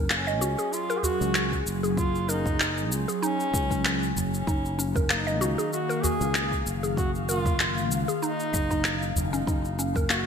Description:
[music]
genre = organic downtempo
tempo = 96 BPM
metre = 4/4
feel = swing 55% on 16ths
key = Eb minor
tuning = A4 = 437 Hz
[part]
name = ethereal airy pad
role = sustained chords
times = 0.3-10.3 s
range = Eb3 to F5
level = -32 LUFS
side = left 1 dB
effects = ensemble chorus, built-in reverb, sidechain pumping
[part]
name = mallet-like synth pluck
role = arpeggios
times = 0.0-10.2 s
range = Bb3 to Eb5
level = -32 LUFS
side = equal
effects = chorus, cassette tape, ping-pong delay
[part]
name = sustaining fretless electric bass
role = bass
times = 0.0-10.3 s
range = Gb1 to Db2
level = -30 LUFS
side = equal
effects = none
[part]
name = warm duduk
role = melody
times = 0.1-10.3 s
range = Db4 to Ab4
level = -31 LUFS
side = right 1 dB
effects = digital delay
[part]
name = electronic handclaps and cabasa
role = drums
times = 0.1-10.2 s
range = none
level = -29 LUFS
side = left 1 dB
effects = gated reverb
[part]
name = udu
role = percussion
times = 1.0-10.1 s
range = none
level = -31 LUFS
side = right 1 dB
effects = none
[part]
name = electronic kick drum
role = drums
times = 1.5-10.1 s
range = none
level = -29 LUFS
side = equal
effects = none
[sound]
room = moderate lush hall reverb, RT60 2.0 s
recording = bright 1980s-style digital production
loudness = -24 LUFS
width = side -7 dB against mid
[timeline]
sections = 0.0-10.3 A section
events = none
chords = 0.0 Gbsus2; 4.5 Ebm7/Gb; 9.5 Gbadd9

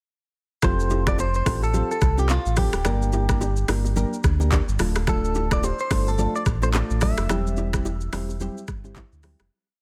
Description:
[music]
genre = afrobeats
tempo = 108 BPM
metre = 4/4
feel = swing 58% on 16ths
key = F major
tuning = A4 = 443 Hz
[part]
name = direct-recorded clean electric guitar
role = melody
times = 0.6-8.6 s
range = F4 to E5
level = -31 LUFS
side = equal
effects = delay
[part]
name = soft electric-piano-like synth keys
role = accompaniment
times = 0.6-9.4 s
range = G3 to Bb4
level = -32 LUFS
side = equal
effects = chorus
[part]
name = kora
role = riff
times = 0.6-9.3 s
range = C4 to D5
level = -37 LUFS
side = equal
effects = none
[part]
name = sub bass with octave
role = bass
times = 0.6-9.5 s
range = D1 to D2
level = -26 LUFS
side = equal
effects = none
[part]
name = afro-pop drum kit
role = drums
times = 0.6-9.5 s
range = finger snaps, handclaps, hi-hat, kick drum, rim click, shaker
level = -27 LUFS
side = equal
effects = overdrive
[part]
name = congas and bongos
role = percussion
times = 0.6-9.4 s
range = none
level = -36 LUFS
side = equal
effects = none
[sound]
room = digital ambience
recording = none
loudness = -23 LUFS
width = mono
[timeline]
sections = 0.6-9.5 chorus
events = fade-out 7.3-9.5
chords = 0.6 Fadd9; 2.9 Gm; 4.8 Dm; 7.3 C/E

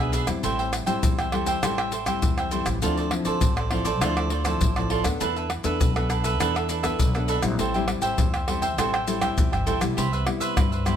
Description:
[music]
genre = samba and choro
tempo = 101 BPM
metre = 4/4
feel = straight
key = A minor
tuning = A4 = 440 Hz
[part]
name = cavaquinho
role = accompaniment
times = 0.0-11.0 s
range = D4 to G5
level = -27 LUFS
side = right 4 dB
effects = none
[part]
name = nylon-string guitar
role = accompaniment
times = 0.0-11.0 s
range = G2 to A4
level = -29 LUFS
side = left 4 dB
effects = none
[part]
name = upright bass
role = bass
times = 0.0-11.0 s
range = G1 to G2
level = -29 LUFS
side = right 1 dB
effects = none
[part]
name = maracas, pandeiro, surdo and tamborim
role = percussion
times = 0.1-11.0 s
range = none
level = -26 LUFS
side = left 1 dB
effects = none
[sound]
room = light reverb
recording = none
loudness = -22 LUFS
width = side -9 dB against mid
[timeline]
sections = 0.0-10.0 A section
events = none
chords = 0.4 Am7; 2.8 Dm9; 5.2 E7sus4; 7.6 Am7; 10.0 Cmaj7

